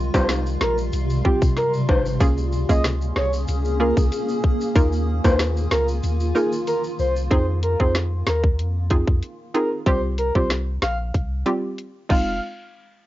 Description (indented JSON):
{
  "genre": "dancehall",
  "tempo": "94 BPM",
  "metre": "4/4",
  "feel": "straight",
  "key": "F minor",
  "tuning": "A4 = 440 Hz",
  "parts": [
    { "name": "granular cloud pad", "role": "sustained chords", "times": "0.0-7.3 s", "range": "C3 to Ab4", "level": "-28 LUFS", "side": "left 1 dB", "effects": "built-in reverb, sidechain pumping, cassette tape" },
    { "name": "punchy sub bass", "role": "bass", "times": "0.0-12.4 s", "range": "F1 to F2", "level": "-24 LUFS", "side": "equal", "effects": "none" },
    { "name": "breathy flute-like synth lead", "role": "melody", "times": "0.1-12.4 s", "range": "G4 to F5", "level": "-25 LUFS", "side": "equal", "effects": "chorus, cassette tape" },
    { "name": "hollow square pluck", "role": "accompaniment", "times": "0.1-12.3 s", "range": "G3 to Bb4", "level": "-25 LUFS", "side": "right 2 dB", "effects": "chorus, cassette tape, plate reverb" },
    { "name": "island pop drum kit", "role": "drums", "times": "0.1-12.3 s", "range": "crash cymbal, hi-hat, kick drum, rim click, snare drum", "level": "-20 LUFS", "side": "equal", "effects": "cassette tape" },
    { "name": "timbales and maracas", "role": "percussion", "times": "0.1-7.3 s", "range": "none", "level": "-30 LUFS", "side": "left 3 dB", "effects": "none" }
  ],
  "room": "light reverb",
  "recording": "home recording on cassette, nothing above 7.5 kHz",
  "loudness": "-19 LUFS",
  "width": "side -15 dB against mid",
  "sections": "0.0-7.3 A section; 7.3-12.4 B section",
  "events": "break 6.0-7.3",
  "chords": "0.0 Csus4; 2.2 Bbm7; 4.8 Ebsus2; 7.3 Fm7; 9.9 Csus4; 12.1 Fm7; 12.4 N.C."
}